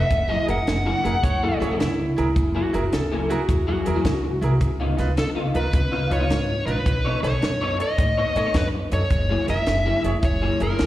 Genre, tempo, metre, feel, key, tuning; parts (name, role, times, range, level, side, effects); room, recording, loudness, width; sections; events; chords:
electric blues shuffle; 107 BPM; 4/4; swing 67% on 8ths; F# mixolydian; A4 = 441 Hz
dark smooth lead guitar; melody; 0.0-1.6, 5.2-10.9 s; A4 to F#5; -25 LUFS; left 1 dB; overdrive, slapback echo
upright bass; bass; 0.0-10.9 s; F#1 to A2; -24 LUFS; equal
compact cocktail drum kit; drums; 0.1-10.9 s; hi-hat, kick drum, snare drum; -24 LUFS; equal
electric guitar through a small old amp; riff; 0.3-10.9 s; C#3 to C#5; -28 LUFS; left 2 dB; ensemble chorus, slapback echo
bright baby grand piano; accompaniment; 0.5-10.7 s; D#4 to C#5; -30 LUFS; right 3 dB; slapback echo
electric slide guitar; second line; 1.2-4.6 s; E4 to C#5; -27 LUFS; right 1 dB; slapback echo
light reverb, small room ambience; live gig heard through the venue's PA, recital hall reverb; -20 LUFS; side -14 dB against mid
0.0-10.9 A section
0.1 F#9; 4.6 C#9; 6.9 B9; 9.1 F#9